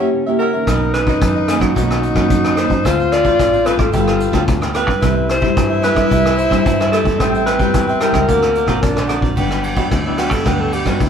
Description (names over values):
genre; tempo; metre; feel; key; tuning
samba and choro; 110 BPM; 4/4; straight; G major; A4 = 436 Hz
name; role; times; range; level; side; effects
breathy alto saxophone; melody; 0.0-11.1 s; E4 to D5; -20 LUFS; right 1 dB; none
breathy tenor saxophone; second line; 0.0-9.4 s; A#3 to F4; -19 LUFS; left 2 dB; none
cavaquinho; accompaniment; 0.0-11.1 s; D4 to G5; -24 LUFS; right 4 dB; none
nylon-string guitar; accompaniment; 0.0-11.1 s; F#2 to A#4; -21 LUFS; left 1 dB; none
fingered electric bass; bass; 0.7-11.1 s; G1 to G2; -21 LUFS; right 1 dB; none
vintage brush drum kit; drums; 0.7-11.1 s; hi-hat, kick drum, ride cymbal, rim click; -19 LUFS; equal; none
room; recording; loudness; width
wet small room reverb, RT60 0.5 s; band playing live in one room; -13 LUFS; side -7 dB against mid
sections
0.0-9.4 A section; 9.4-11.1 B section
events
alto saxophone solo 9.4-11.1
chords
0.0 F#7b9; 0.7 Bmaj9; 2.8 Dm7; 3.9 G9; 5.0 C6; 7.2 Am7; 8.3 Daug7; 9.4 Gmaj7